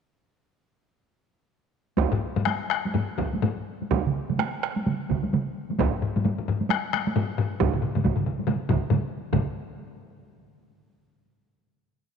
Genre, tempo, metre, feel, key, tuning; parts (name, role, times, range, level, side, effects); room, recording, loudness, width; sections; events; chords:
japanese traditional, taiko drum ensemble; 123-151 BPM; 4/4; swing 60% on 16ths
taiko ensemble; percussion; 2.0-9.5 s; -29 LUFS; right 1 dB
taiko ensemble; percussion; 2.0-9.5 s; -29 LUFS; right 4 dB
taiko ensemble; percussion; 2.1-9.7 s; -26 LUFS; left 6 dB
taiko ensemble; percussion; 4.1-9.7 s; -29 LUFS; right 7 dB
moderate plate reverb, RT60 2.6 s; 1960s-style stereo with parts hard left and right; -24 LUFS; side -7 dB against mid
2.0-9.3 A section; 9.3-11.0 final hit
speeding up 2.0-11.0